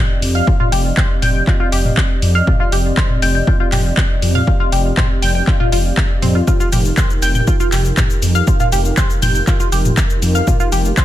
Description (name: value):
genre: melodic techno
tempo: 120 BPM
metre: 4/4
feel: straight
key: unclear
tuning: A4 = 440 Hz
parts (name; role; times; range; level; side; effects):
- dark analog pad; sustained chords; 0.0-11.0 s; C4 to Eb5; -24 LUFS; right 1 dB; chorus, sidechain pumping
- swelling detuned saw bass; bass; 0.2-10.9 s; F1 to F2; -16 LUFS; equal; sidechain pumping
- house drum kit; drums; 0.2-11.0 s; handclaps, hi-hat, shaker, toms; -20 LUFS; left 1 dB; studio reverb
- tight sequenced synth; arpeggios; 0.3-11.0 s; C4 to G5; -21 LUFS; left 1 dB; chorus, phaser, sidechain pumping, dub echo
- electronic kick drum; drums; 0.5-11.0 s; none; -16 LUFS; equal; studio reverb
room: little or no reverb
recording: none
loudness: -12 LUFS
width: side -13 dB against mid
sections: 0.0-11.0 A section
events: none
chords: 0.0 Cm/F; 6.5 Eb/F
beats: | 0.47 0.97 1.47 1.97 | 2.47 2.97 3.47 3.97 | 4.47 4.97 5.47 5.97 | 6.47 6.97 7.47 7.97 | 8.47 8.97 9.47 9.97 | 10.47 10.97